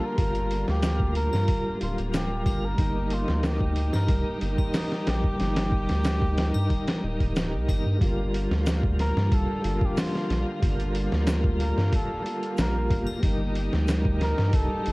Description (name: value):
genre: trip hop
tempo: 92 BPM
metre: 4/4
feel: straight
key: G minor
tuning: A4 = 440 Hz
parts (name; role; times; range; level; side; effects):
- trumpet with cup mute; melody; 0.0-14.9 s; Eb4 to Bb4; -34 LUFS; equal; dub echo
- tonewheel organ; accompaniment; 0.0-14.9 s; G3 to Bb4; -31 LUFS; equal; chorus vibrato, slow rotary speaker, tremolo, vintage 12-bit sampler grit, tape echo
- clear symphonic string section; sustained chords; 0.0-14.9 s; D3 to G4; -35 LUFS; equal; none
- soft dub sub bass; bass; 0.2-14.9 s; D1 to G2; -26 LUFS; equal; tube saturation
- trip hop sampler-style drum kit; drums; 0.2-14.9 s; hi-hat, kick drum, snare drum; -27 LUFS; equal; studio reverb
- egg shaker and triangle; percussion; 0.8-14.0 s; none; -45 LUFS; left 4 dB; none
room: studio reverb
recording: worn, warbling old tape, cassette tape, warbly pitch drift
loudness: -23 LUFS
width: side -23 dB against mid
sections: 0.0-8.0 A section; 8.0-14.9 B section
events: none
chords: 0.0 Gm7; 2.8 Eb/G; 8.0 Gm7; 13.2 Eb/G